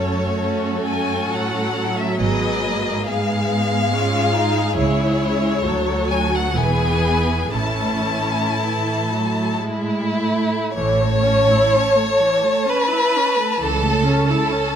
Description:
classical, slow romantic movement for string orchestra; 48-72 BPM; 3/4; rubato; A major from 4.8 s; A4 = 440 Hz
rich chamber violin section; melody; 0.0-14.8 s; C#5 to A5; -24 LUFS; left 6 dB
rich chamber violin section; second line; 0.0-14.8 s; E4 to C#5; -21 LUFS; left 1 dB
warm chamber viola section; accompaniment; 0.0-14.8 s; E3 to F#4; -24 LUFS; right 3 dB
dark studio double bass section; bass; 0.0-14.4 s; E1 to D2; -25 LUFS; right 3 dB
warm chamber cello section; bass; 0.0-14.4 s; C#2 to C#3; -24 LUFS; right 2 dB
moderate concert hall reverb, RT60 1.8 s; close, detailed microphones; -17 LUFS; side -8 dB against mid
0.0-10.8 A section; 10.8-14.8 B section
0.0 F#m; 2.2 Fdim/Ab; 4.8 C#m; 5.7 D; 6.6 E; 7.5 A; 13.6 A/C#
0.40 1.30 | 2.19 3.07 3.93 | 4.78 5.65 6.58 | 7.55 8.58 9.61 | 10.77 11.74 12.68 | 13.62 14.52

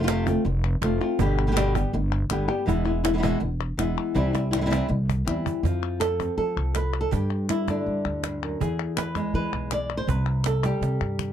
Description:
flamenco; 162 BPM; 4/4; straight; A4 = 440 Hz
flamenco guitar; melody; 0.0-11.3 s; E2 to D5; -26 LUFS; left 1 dB
upright bass; bass; 0.0-11.3 s; E1 to G3; -26 LUFS; equal
cajon; percussion; 0.1-11.3 s; -31 LUFS; right 8 dB
palmas hand claps; percussion; 0.1-11.3 s; -33 LUFS; left 22 dB
little or no reverb; dry, close 1970s-style studio recording; -23 LUFS; side -10 dB against mid
0.0-5.6 A section; 5.6-11.3 B section
drum fill 4.2-5.6, 10.6-11.3
0.0 F; 1.2 G; 2.7 E; 4.2 C; 5.6 F; 7.1 G5; 8.6 E; 10.1 C5
0.08 0.45 0.82 | 1.20 1.57 1.94 2.31 | 2.68 3.05 3.42 3.79 | 4.16 4.53 4.89 5.26 | 5.64 6.01 6.38 6.75 | 7.12 7.49 7.86 8.23 | 8.60 8.97 9.35 9.71 | 10.09 10.46 10.83 11.20

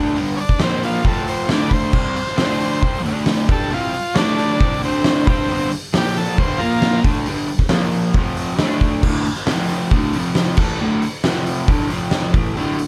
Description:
garage rock duo or trio; 136 BPM; 4/4; straight; A4 = 440 Hz
raw garage guitar; riff; 0.0-12.8 s; D2 to G4; -22 LUFS; equal; overdrive
oversized low-tuned drum kit; drums; 0.2-12.9 s; crash cymbal, hi-hat, kick drum, snare drum; -22 LUFS; equal
combo organ; melody; 0.4-7.0 s; B3 to D5; -25 LUFS; equal
light reverb; -18 LUFS; mono
0.0-9.0 A section; 9.0-12.9 B section
transistor combo organ solo 0.0-9.0
0.0 G5; 0.6 Bb5; 1.1 F5; 1.5 D5; 1.9 C5; 2.4 D5; 2.8 C5; 3.1 D5; 3.5 C5; 4.2 D5; 4.6 C5; 4.8 D5; 5.3 G5; 5.9 Bb5; 6.4 G5; 6.6 Bb5; 7.0 G5; 7.7 Bb5; 8.2 F5; 8.6 D5; 9.5 F5; 9.9 D5; 10.1 F5; 10.6 D5; 11.2 F5; 11.7 D5; 11.9 F5; 12.3 D5
| 0.17 0.61 1.06 1.50 | 1.95 2.39 2.84 3.28 | 3.73 4.17 4.61 5.06 | 5.50 5.94 6.38 6.83 | 7.27 7.71 8.15 8.60 | 9.04 9.48 9.92 10.36 | 10.80 11.24 11.68 12.12 | 12.56

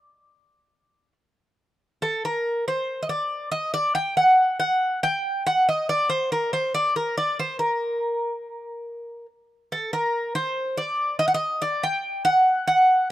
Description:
greek folk; 140 BPM (eighths); 9/8; straight; D phrygian dominant; A4 = 441 Hz
Greek bouzouki; solo; 0.0-13.1 s; A4 to G5; -21 LUFS; equal
small room ambience; dry, close 1970s-style studio recording; -21 LUFS; side -14 dB against mid
0.0-2.0 A section; 2.0-13.1 B section
0.30 0.73 1.16 1.59 | 2.02 2.45 2.88 3.30 3.73 4.16 4.59 5.02 5.44 | 5.87 6.30 6.73 7.15 7.58 8.01 8.44 8.86 9.29 | 9.72 10.14 10.57 11.00 11.43 11.85 12.28 12.71

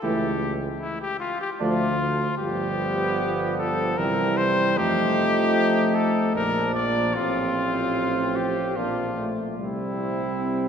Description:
classical, brass quintet; 76 BPM; 3/4; straight; F major; A4 = 440 Hz
clear trumpet; melody; 0.0-10.7 s; E4 to D5; -26 LUFS; left 2 dB
mellow trumpet; second line; 0.0-10.7 s; B3 to E4; -31 LUFS; right 7 dB
mellow French horn; accompaniment; 0.0-10.7 s; G3 to C4; -28 LUFS; left 2 dB
warm trombone; accompaniment; 0.0-10.7 s; C3 to F3; -31 LUFS; right 3 dB
clear tuba; bass; 0.0-10.7 s; G1 to F2; -30 LUFS; right 2 dB
wet church reverb, RT60 3.3 s; recorded in a church or concert hall; -22 LUFS; side -7 dB against mid
0.0-10.7 A section
0.0 A/C#; 1.6 Dm; 2.4 G7; 4.0 C; 4.8 F7; 6.4 Bb; 7.2 F/A; 8.8 Bb; 9.6 C
| 0.03 0.82 1.60 | 2.39 3.18 3.98 | 4.77 5.56 6.35 | 7.15 7.96 8.77 | 9.59 10.41

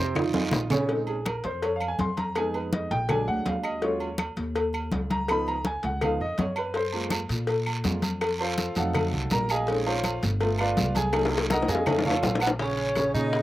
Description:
Afro-Cuban jazz; 164 BPM; 4/4; straight; Bb minor; A4 = 442 Hz
clear baby grand piano; accompaniment; 0.0-13.4 s; C3 to C6; -28 LUFS; right 2 dB
upright bass; bass; 0.0-13.4 s; G1 to Bb2; -31 LUFS; equal
bongos and cowbell; percussion; 0.2-13.4 s; -30 LUFS; left 3 dB; slapback echo
claves; percussion; 0.2-13.1 s; -37 LUFS; left 4 dB
congas; percussion; 0.2-13.4 s; -30 LUFS; left 1 dB
guiro; percussion; 0.2-0.9, 6.8-13.4 s; -36 LUFS; right 2 dB
timbales and agogo bells; percussion; 0.2-13.4 s; -34 LUFS; right 4 dB
breathy tenor saxophone; melody; 12.4-13.4 s; Cb4 to Eb4; -28 LUFS; right 2 dB
breathy mellow silver concert flute; second line; 12.4-13.4 s; Cb5 to Eb5; -32 LUFS; left 1 dB; slapback echo
little or no reverb; recorded outdoors, with no room sound; -24 LUFS; side -15 dB against mid
0.9-12.6 A section
drum fill 0.2-0.9, 11.1-12.6; grand piano solo 0.9-12.6
0.2 Bbmadd11; 0.9 Bbm11; 2.4 Fm7b5; 3.1 Bb7b13; 3.8 Ebm11; 5.3 Db9; 6.8 Gbmaj9; 8.2 F7b9; 9.7 Bbm11; 10.4 G7; 11.1 Cm7b5; 11.9 F7alt; 12.6 Bbm
0.16 0.53 | 0.89 1.26 1.63 1.99 | 2.36 2.73 3.09 3.46 | 3.83 4.19 4.56 4.92 | 5.29 5.66 6.02 6.39 | 6.75 7.12 7.49 7.85 | 8.22 8.58 8.95 9.31 | 9.68 10.04 10.41 10.77 | 11.14 11.50 11.87 12.23 | 12.60 12.97 13.33

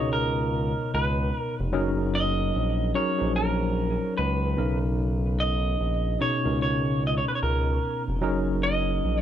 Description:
R&B, neo-soul; 74 BPM; 4/4; swing 60% on 16ths; A4 = 440 Hz
electric guitar through a small old amp; melody; 0.0-9.2 s; A#4 to D#5; -29 LUFS; right 2 dB
tine electric piano; accompaniment; 0.0-9.2 s; B2 to D#5; -28 LUFS; left 1 dB; overdrive, fast stereo tremolo
smooth synth bass; bass; 0.0-9.2 s; E#1 to C#2; -27 LUFS; equal
little or no reverb; -23 LUFS; side -10 dB against mid
0.0-9.2 A section
0.0 Bmaj9; 1.7 F#6; 4.6 Bmaj9; 8.2 F#6
0.10 0.91 | 1.73 2.54 3.35 4.16 | 4.97 5.78 6.59 7.40 | 8.21 9.02

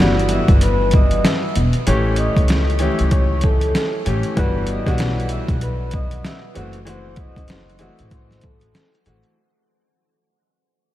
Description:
hip hop, boom-bap hip-hop; 96 BPM; 4/4; swing 59% on 16ths; A4 = 435 Hz
clear grand piano; accompaniment; 0.0-9.4 s; E3 to G4; -23 LUFS; left 1 dB; cassette tape, high-pass filter, low-pass filter
upright bass; bass; 0.0-9.2 s; E1 to C#2; -21 LUFS; equal
trip hop sampler-style drum kit; drums; 0.0-9.4 s; hi-hat, kick drum, snare drum; -19 LUFS; equal; overdrive
vibraphone with soft mallets; melody; 0.3-8.9 s; A4 to E6; -25 LUFS; left 1 dB; high-pass filter, low-pass filter, ping-pong delay
moderate huge ambient reverb, RT60 7.3 s; dreamy mix soaked in reverb, vinyl crackle; -15 LUFS; side -14 dB against mid
0.0-9.4 A section
fade-out 0.0-9.4
0.0 Emadd9; 1.9 A7; 4.4 Emadd9/G; 6.6 F#m7b5
0.62 1.24 | 1.87 2.49 3.12 3.74 | 4.37 4.99 5.62 6.24 | 6.87 7.49 8.12 8.74

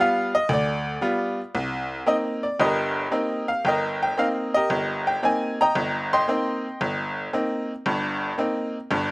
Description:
solo jazz; 114 BPM; 4/4; swing 67% on 8ths; C minor; A4 = 439 Hz
tack piano; solo; 0.0-9.1 s; G1 to C6; -22 LUFS; equal; slapback echo
little or no reverb; recorded outdoors, with no room sound; -22 LUFS; side -26 dB against mid
0.0-1.5 A section; 1.5-9.1 B section
honky-tonk piano solo 0.0-1.5
0.0 G7; 1.5 Cm7
0.50 1.02 | 1.55 2.07 2.60 3.12 | 3.65 4.18 4.70 5.23 | 5.76 6.28 6.81 7.33 | 7.86 8.39 8.91

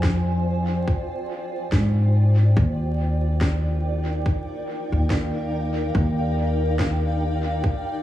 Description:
ambient dub; 71 BPM; 4/4; swing 57% on 16ths; A4 = 442 Hz
granular cloud pad; sustained chords; 0.0-8.0 s; Eb4 to Ab5; -28 LUFS; equal; built-in reverb
upright bass; bass; 0.0-7.6 s; Eb2 to Ab2; -21 LUFS; equal
electronic kick drum; drums; 0.0-7.8 s; -23 LUFS; equal
electronic snare drum; drums; 0.0-7.0 s; -32 LUFS; equal; dub echo
light reverb; vinyl crackle, small room ambience; -20 LUFS; side -13 dB against mid
0.0-8.0 A section
0.0 Fm69; 2.6 Ebmaj9
0.03 0.88 1.72 | 2.57 3.41 4.26 5.10 | 5.95 6.79 7.64

